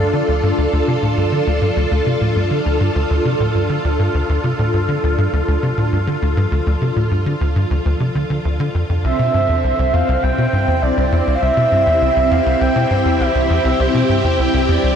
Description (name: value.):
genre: ambient, sequencer-driven space music.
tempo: 101 BPM.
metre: 4/4.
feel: straight.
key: D minor.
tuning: A4 = 440 Hz.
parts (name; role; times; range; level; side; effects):
string machine, full ensemble; sustained chords; 0.0-15.0 s; C4 to A4; -19 LUFS; equal; phaser, ensemble chorus, shimmer reverb.
tight sequencer bass; riff; 0.0-14.9 s; C2 to D3; -17 LUFS; equal; ensemble chorus, analog delay.
breathy flute-like synth lead; melody; 9.0-15.0 s; C5 to G5; -18 LUFS; right 2 dB; lush chorus, cassette tape, shimmer reverb, analog delay.
room: wet huge ambient reverb, RT60 7.8 s.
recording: cassette tape.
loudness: -14 LUFS.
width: side -8 dB against mid.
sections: 0.0-15.0 A section.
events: none.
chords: 0.0 Dm; 9.0 C.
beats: 0.13 0.73 1.32 | 1.92 2.51 3.10 3.70 | 4.29 4.89 5.48 6.08 | 6.67 7.26 7.86 8.45 | 9.04 9.64 10.23 10.83 | 11.42 12.02 12.61 13.20 | 13.80 14.39.